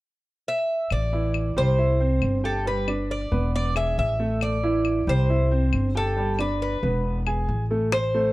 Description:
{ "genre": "latin, Cuban son and guajira", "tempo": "137 BPM", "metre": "4/4", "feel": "straight", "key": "A minor", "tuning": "A4 = 440 Hz", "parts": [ { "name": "Cuban tres", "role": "melody", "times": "0.5-8.3 s", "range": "A4 to E5", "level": "-26 LUFS", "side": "equal", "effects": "slapback echo" }, { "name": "upright bass", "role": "bass", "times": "0.9-8.3 s", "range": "E1 to C2", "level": "-24 LUFS", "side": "equal", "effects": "none" }, { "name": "claves", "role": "percussion", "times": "0.9-8.1 s", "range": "none", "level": "-31 LUFS", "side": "left 10 dB", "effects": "none" }, { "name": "warm grand piano", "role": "arpeggios", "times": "1.1-8.3 s", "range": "E3 to G#5", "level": "-27 LUFS", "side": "right 2 dB", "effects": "none" }, { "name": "bongos", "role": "percussion", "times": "7.9-8.1 s", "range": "none", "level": "-30 LUFS", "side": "left 5 dB", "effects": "none" } ], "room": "small room ambience", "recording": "dry, close 1970s-style studio recording", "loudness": "-21 LUFS", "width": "side -18 dB against mid", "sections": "0.9-7.9 A section", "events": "none", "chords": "0.0 N.C.; 0.9 Am; 1.8 C; 2.7 G; 3.5 E; 4.4 Am; 5.3 C; 6.2 G; 7.0 E" }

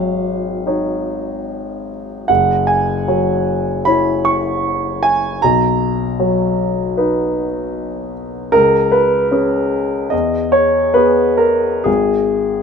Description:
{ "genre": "classical, impressionist solo piano", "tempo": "63-79 BPM", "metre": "4/4", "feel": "rubato", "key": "unclear", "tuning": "A4 = 436 Hz", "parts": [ { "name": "clear concert grand piano", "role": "solo", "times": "0.0-12.6 s", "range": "F#1 to C#6", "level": "-14 LUFS", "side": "equal", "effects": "none" } ], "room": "light reverb", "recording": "minimal, uncompressed stereo recording", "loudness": "-14 LUFS", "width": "side -6 dB against mid", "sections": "0.0-12.6 A section", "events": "none", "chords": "0.0 D#m9/G#; 2.3 F#sus2; 5.4 Bmaj7; 8.5 C#5; 10.1 E; 11.9 N.C." }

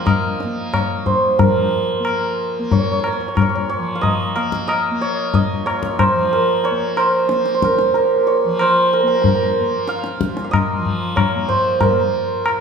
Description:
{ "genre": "indian classical, Hindustani", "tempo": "92 BPM", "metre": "4/4", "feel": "straight", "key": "Bb raga bhimpalasi", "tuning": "A4 = 440 Hz", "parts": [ { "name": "santur", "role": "melody", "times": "0.0-12.6 s", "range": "Bb4 to F5", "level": "-18 LUFS", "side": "right 2 dB", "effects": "slapback echo" }, { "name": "tanpura", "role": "drone", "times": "0.0-12.6 s", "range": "Bb2 to Bb3", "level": "-26 LUFS", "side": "equal", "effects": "none" }, { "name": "tabla", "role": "percussion", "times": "0.1-12.6 s", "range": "none", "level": "-19 LUFS", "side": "left 4 dB", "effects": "none" } ], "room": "wet large studio reverb, RT60 1.2 s", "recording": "band playing live in one room", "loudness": "-15 LUFS", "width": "side -6 dB against mid", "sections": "0.0-1.4 A section; 1.4-12.6 B section", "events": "speeding up 0.0-12.6", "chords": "none" }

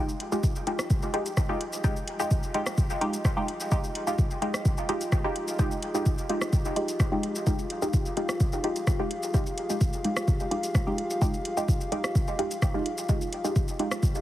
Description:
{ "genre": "dub techno", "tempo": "128 BPM", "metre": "4/4", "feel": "straight", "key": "F minor", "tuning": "A4 = 440 Hz", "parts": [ { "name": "dark analog pad", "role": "sustained chords", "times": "0.0-14.2 s", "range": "F4 to F5", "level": "-35 LUFS", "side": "left 1 dB", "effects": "chorus, sidechain pumping" }, { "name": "filtered dub chord stab", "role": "stabs", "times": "0.0-14.0 s", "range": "Ab3 to G4", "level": "-30 LUFS", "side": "equal", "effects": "chorus, phaser, sidechain pumping, dub echo" }, { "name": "soft vintage rhythm box", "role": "drums", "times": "0.1-14.2 s", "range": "hi-hat, rim click, shaker", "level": "-35 LUFS", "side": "equal", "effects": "studio reverb" }, { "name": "electronic kick drum", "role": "drums", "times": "0.4-14.1 s", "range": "none", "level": "-25 LUFS", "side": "equal", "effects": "overdrive, studio reverb" } ], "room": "light reverb, digital ambience", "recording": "heavily compressed radio sound, vinyl crackle", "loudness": "-25 LUFS", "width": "side -14 dB against mid", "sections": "0.0-14.2 A section", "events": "filter sweep on synth stab 0.0-14.2", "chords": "0.0 Fm9" }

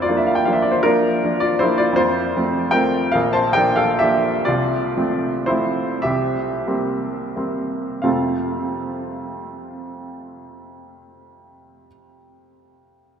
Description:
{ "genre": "classical, romantic nocturne for solo piano", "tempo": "27-54 BPM (dotted quarters)", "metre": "6/8", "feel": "rubato", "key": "F major", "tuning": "A4 = 440 Hz", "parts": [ { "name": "clear baby grand piano", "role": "solo", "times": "0.0-13.2 s", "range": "Bb1 to A5", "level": "-18 LUFS", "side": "equal", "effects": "none" } ], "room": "wet cathedral reverb, RT60 5.4 s", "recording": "in a vast, echoing space", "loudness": "-17 LUFS", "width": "side -7 dB against mid", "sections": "0.0-8.1 A section; 8.1-11.9 B section", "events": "slowing down 0.8-8.1", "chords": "0.0 Bb/F; 2.0 F; 3.1 Bb; 4.5 F/C; 6.0 C7; 8.1 F" }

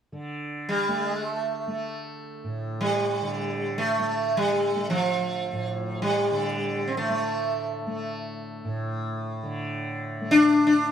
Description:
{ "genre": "indian classical", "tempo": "free time", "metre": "none", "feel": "none", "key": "unclear", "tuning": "A4 = 442 Hz", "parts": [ { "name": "tanpura", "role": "drone", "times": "0.1-10.9 s", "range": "A2 to A3", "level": "-32 LUFS", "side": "equal", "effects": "none" }, { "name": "sitar", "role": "melody", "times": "0.7-10.9 s", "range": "F3 to D4", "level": "-23 LUFS", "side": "equal", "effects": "plate reverb" } ], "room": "moderate studio reverb, RT60 0.5 s", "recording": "none", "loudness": "-24 LUFS", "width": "side -8 dB against mid", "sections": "0.1-10.9 A section", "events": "none", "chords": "none" }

